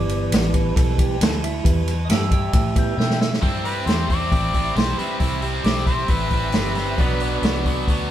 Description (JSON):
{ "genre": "blues rock power trio and southern rock", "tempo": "135 BPM", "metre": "4/4", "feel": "straight", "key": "unclear", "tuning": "A4 = 440 Hz", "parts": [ { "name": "percussive tonewheel organ", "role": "sustained chords", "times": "0.0-8.1 s", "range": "E3 to G5", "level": "-27 LUFS", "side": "right 2 dB", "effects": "slow rotary speaker" }, { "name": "vintage muted fingered electric bass", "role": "bass", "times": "0.0-8.1 s", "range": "G1 to B2", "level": "-24 LUFS", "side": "equal", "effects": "none" }, { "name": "vintage drum kit", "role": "drums", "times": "0.1-8.0 s", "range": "hi-hat, kick drum, ride cymbal, snare drum", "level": "-21 LUFS", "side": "equal", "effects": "none" }, { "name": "tight distorted guitar", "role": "riff", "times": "3.4-8.1 s", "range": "B2 to C4", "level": "-25 LUFS", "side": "equal", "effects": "distortion" }, { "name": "bright harmonica", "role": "melody", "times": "3.7-7.6 s", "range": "E4 to D5", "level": "-27 LUFS", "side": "left 2 dB", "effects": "overdrive" } ], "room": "moderate stone room reverb, RT60 1.1 s", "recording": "band playing live in one room", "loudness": "-18 LUFS", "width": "side -11 dB against mid", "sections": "0.0-3.4 A section; 3.4-8.1 B section", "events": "tonewheel organ solo 0.0-3.4; drum fill 3.0-3.4", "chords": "0.0 Em; 3.4 C; 7.0 Bm" }